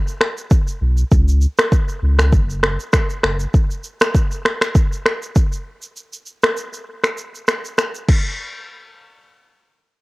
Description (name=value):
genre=afrobeats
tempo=99 BPM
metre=4/4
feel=swing 55% on 16ths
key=unclear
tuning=A4 = 441 Hz
part: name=afro-pop drum kit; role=drums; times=0.1-8.2 s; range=crash cymbal, finger snaps, kick drum, rim click, shaker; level=-16 LUFS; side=equal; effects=cassette tape
part: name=warm sub bass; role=bass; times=0.8-3.5 s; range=F#1 to C#2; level=-16 LUFS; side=equal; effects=none
room=light reverb, digital ambience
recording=home recording on cassette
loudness=-16 LUFS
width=side -23 dB against mid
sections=0.0-8.4 A section; 8.4-10.0 B section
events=kick muted 7.2-8.4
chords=none